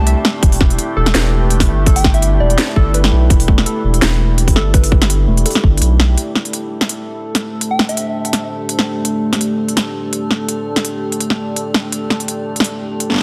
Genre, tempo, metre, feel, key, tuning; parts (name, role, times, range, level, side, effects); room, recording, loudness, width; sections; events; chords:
half-time drum and bass; 167 BPM; 4/4; swing 54% on 16ths, half-time; A minor; A4 = 438 Hz
deep dark ambient pad; sustained chords; 0.0-13.2 s; E3 to C5; -25 LUFS; equal; chorus, built-in reverb, sidechain pumping
saturated sub bass; bass; 0.0-6.2 s; E1 to C2; -16 LUFS; equal
metallic inharmonic drone; texture; 0.0-13.2 s; E4 to A4; -30 LUFS; equal; chorus, built-in reverb
warbly dusty pluck; arpeggios; 0.1-5.6 s; A3 to E5; -27 LUFS; equal; subtle chorus, dub echo
drum and bass drum kit; drums; 0.1-13.2 s; hi-hat, snare drum; -19 LUFS; equal; soft clipping on snare
electronic kick drum; drums; 0.4-5.7 s; -14 LUFS; equal
soft synth bell; melody; 2.0-2.9, 7.7-8.2 s; D5 to G5; -25 LUFS; equal; chorus, vintage 12-bit sampler grit, tape echo
light reverb, digital ambience; dense, heavily limited modern master; -15 LUFS; mono
0.0-6.2 A section; 6.2-13.2 B section
drop 0.0-6.2; kick drops out 5.8-6.2
0.4 Em; 6.2 Am; 11.9 Em